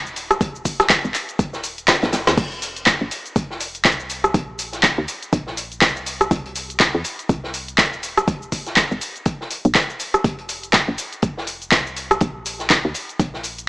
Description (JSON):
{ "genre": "deep house", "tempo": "122 BPM", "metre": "4/4", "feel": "swing 58% on 16ths", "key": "unclear", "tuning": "A4 = 438 Hz", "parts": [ { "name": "woody FM bass", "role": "bass", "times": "0.0-13.7 s", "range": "Eb1 to E2", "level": "-25 LUFS", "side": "equal", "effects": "sidechain pumping" }, { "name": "deep house drum kit", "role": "drums", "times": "0.1-13.7 s", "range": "crash cymbal, handclaps, hi-hat, rim click, shaker, snare drum", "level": "-18 LUFS", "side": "equal", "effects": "studio reverb" }, { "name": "vintage drum kit", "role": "drums", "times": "0.2-13.6 s", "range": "hi-hat, snare drum", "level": "-28 LUFS", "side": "equal", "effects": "high-pass filter on hats, studio reverb, high-pass filter on snare, high-pass filter on room" }, { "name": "electronic kick drum", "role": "drums", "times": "0.4-13.3 s", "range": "none", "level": "-21 LUFS", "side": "equal", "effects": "studio reverb" } ], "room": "light reverb, small room ambience", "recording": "small speaker sound", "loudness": "-18 LUFS", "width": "side -23 dB against mid", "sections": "0.0-13.7 A section", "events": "drum fill 1.9-2.4", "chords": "none", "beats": "| 0.41 0.90 1.39 1.88 | 2.38 2.87 3.36 3.85 | 4.34 4.83 5.33 5.82 | 6.31 6.80 7.29 7.79 | 8.28 8.77 9.26 9.75 | 10.24 10.74 11.23 11.72 | 12.21 12.70 13.20" }